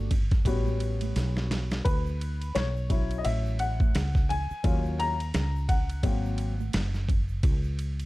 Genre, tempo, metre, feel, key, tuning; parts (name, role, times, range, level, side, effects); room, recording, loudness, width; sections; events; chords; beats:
hip hop, jazz-hop; 86 BPM; 4/4; swing 58% on 16ths; A4 = 440 Hz
warm upright piano; accompaniment; 0.0-7.0 s; F#3 to A#5; -32 LUFS; left 4 dB; plate reverb
woody fretless electric bass; bass; 0.0-8.1 s; F#1 to D#2; -29 LUFS; equal; wide subtle chorus
boom bap sampler-style drum kit; drums; 0.1-8.1 s; hi-hat, kick drum, ride cymbal, snare drum; -27 LUFS; equal
congas and egg shaker; percussion; 0.1-8.1 s; -42 LUFS; right 14 dB
little or no reverb; dark, warm production; -25 LUFS; side -19 dB against mid
0.0-8.1 A section
upright piano solo 0.0-8.1; drum fill 1.2-1.9
0.5 A13; 1.9 Dmaj7; 4.6 D#m7; 6.0 G#9; 7.4 N.C.
0.46 1.16 | 1.86 2.55 3.25 3.95 | 4.65 5.34 6.04 6.74 | 7.44